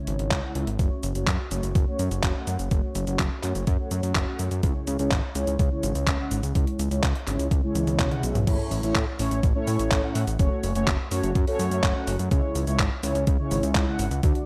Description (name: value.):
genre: italo disco.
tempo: 125 BPM.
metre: 4/4.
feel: straight.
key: F# minor.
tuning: A4 = 440 Hz.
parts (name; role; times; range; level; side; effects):
mellow synth brass; stabs; 0.0-14.5 s; A2 to F#5; -31 LUFS; equal; chorus, tape echo.
fat analog bass; bass; 0.1-14.3 s; F#1 to A2; -30 LUFS; equal; none.
detuned 8-bit digital drum machine; drums; 0.1-14.4 s; cabasa, crash cymbal, handclaps, hi-hat, toms; -32 LUFS; equal; overdrive.
electronic kick drum; drums; 0.3-14.3 s; none; -27 LUFS; equal; overdrive.
room: light reverb, digital ambience.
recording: dark, warm production.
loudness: -25 LUFS.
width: mono.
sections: 0.0-8.5 A section; 8.5-14.5 B section.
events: filter sweep on analog polysynth 0.0-8.5; drum fill 7.8-8.5.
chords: 0.0 C#m; 0.8 F#m; 4.6 C#m; 8.5 A; 10.4 F#m; 12.3 C#m.